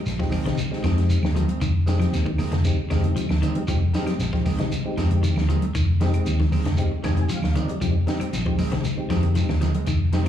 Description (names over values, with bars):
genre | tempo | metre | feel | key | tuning
afrobeat | 116 BPM | 4/4 | straight | F minor | A4 = 440 Hz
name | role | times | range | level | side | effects
percussive tonewheel organ | accompaniment | 0.0-10.3 s | Ab3 to Ab5 | -30 LUFS | left 1 dB | slow rotary speaker, chorus vibrato, slapback echo
clean electric guitar | arpeggios | 0.0-10.3 s | D3 to G3 | -31 LUFS | left 9 dB | tape echo, slapback echo
fingered electric bass | bass | 0.1-10.3 s | F1 to F2 | -22 LUFS | equal | none
compact cocktail drum kit | drums | 0.1-10.3 s | hi-hat, kick drum, snare drum | -30 LUFS | equal | none
shekere | percussion | 0.1-10.3 s | none | -32 LUFS | right 2 dB | slapback echo
mellow electric guitar | stabs | 0.3-10.3 s | Eb3 to C4 | -31 LUFS | right 8 dB | analog chorus, slapback echo
claves | percussion | 0.3-10.3 s | none | -44 LUFS | right 3 dB | none
congas | percussion | 0.3-10.3 s | none | -28 LUFS | right 2 dB | slapback echo
room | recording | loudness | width
little or no reverb | live gig heard through the venue's PA, club reverb, studio reverb | -20 LUFS | side -10 dB against mid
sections
0.0-10.3 A section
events
tonewheel organ fill 6.8-7.8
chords
0.0 Fm7